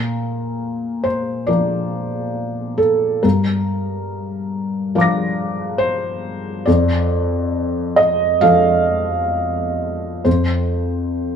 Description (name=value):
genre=neoclassical minimalist piano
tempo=63-71 BPM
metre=4/4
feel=rubato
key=Bb major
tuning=A4 = 440 Hz
part: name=felt-muted upright piano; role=solo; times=0.0-11.4 s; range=F2 to Bb6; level=-17 LUFS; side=equal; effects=none
room=wet stone room reverb, RT60 1.0 s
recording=band playing live in one room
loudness=-16 LUFS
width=side -7 dB against mid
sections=0.0-11.4 A section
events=none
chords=0.0 Bb; 3.2 Gm7; 6.7 Dm/F; 10.3 F5